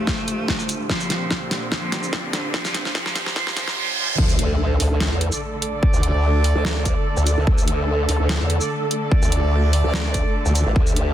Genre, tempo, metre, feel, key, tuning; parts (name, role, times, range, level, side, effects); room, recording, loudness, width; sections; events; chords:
heavy wobble dubstep; 146 BPM; 4/4; swing 53% on 16ths, half-time; D minor; A4 = 440 Hz
clear cello; melody; 0.0-4.2 s; D3 to A3; -28 LUFS; right 1 dB; ping-pong delay
rich symphonic string section; sustained chords; 0.0-11.1 s; D2 to A4; -29 LUFS; left 1 dB; sidechain pumping
riser, reverse cymbal and impact; sound effects; 0.8-5.8 s; -28 LUFS; right 1 dB
airy breathy pad; texture; 0.0-11.1 s; Bb2 to A5; -32 LUFS; right 3 dB; chorus, sidechain pumping
dubstep drum kit; drums; 0.1-11.1 s; crash cymbal, hi-hat, shaker, snare drum; -25 LUFS; equal; overdrive
electronic kick drum; drums; 0.1-10.8 s; -20 LUFS; equal; overdrive
formant-sweep wobble bass; bass; 4.2-11.1 s; A1 to E2; -21 LUFS; equal; chorus, overdrive
warm brass ensemble; stabs; 5.3-10.7 s; A3 to D5; -29 LUFS; right 4 dB; ping-pong delay
formant-sweep wobble bass; bass; 5.9-10.6 s; D2; -17 LUFS; equal; chorus, overdrive
digital ambience; dense, heavily limited modern master, high-pass filter; -18 LUFS; side -11 dB against mid
0.0-4.2 A section; 4.2-11.1 B section
build-up 0.0-4.2; drum fill 0.0-3.8; filter sweep 0.0-4.2; riser 0.8-4.2; reverse cymbal 3.4-4.2; drop 4.2-11.1; impact 4.2-5.8
0.0 Dm; 0.9 Bbadd9; 4.2 D5